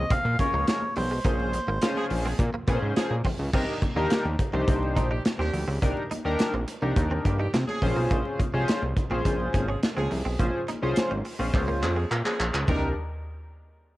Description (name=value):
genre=early-eighties boogie funk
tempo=105 BPM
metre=4/4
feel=straight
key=C phrygian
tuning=A4 = 440 Hz
part: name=melodica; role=melody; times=0.0-2.1 s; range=C5 to F5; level=-29 LUFS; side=equal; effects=cassette tape, analog delay
part: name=direct-recorded clean electric guitar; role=riff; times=0.0-12.9 s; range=G3 to Eb4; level=-37 LUFS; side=right 3 dB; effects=ensemble chorus, cassette tape
part: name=fat analog bass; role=bass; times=0.0-12.9 s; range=Ab1 to C3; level=-28 LUFS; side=equal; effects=tube saturation
part: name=modern studio drum kit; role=drums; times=0.1-12.8 s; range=crash cymbal, handclaps, hi-hat, kick drum, snare drum, toms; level=-28 LUFS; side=equal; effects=cassette tape
part: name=congas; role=percussion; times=0.1-12.9 s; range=none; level=-39 LUFS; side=left 2 dB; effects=none
part: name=chorused polysynth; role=accompaniment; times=0.4-12.9 s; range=Db4 to C5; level=-30 LUFS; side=left 1 dB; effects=cassette tape
part: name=warm horn section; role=second line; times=2.0-12.9 s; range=Eb3 to Bb4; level=-34 LUFS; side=right 1 dB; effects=cassette tape
room=light reverb, small room ambience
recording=home recording on cassette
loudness=-23 LUFS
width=side -17 dB against mid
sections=0.0-3.5 A section; 3.5-12.7 B section; 12.7-14.0 C section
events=band accent 1.2-3.5; drum fill 11.5-12.7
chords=0.0 Bbm9; 3.5 Cm9; 7.8 Bbm9; 12.7 Cm9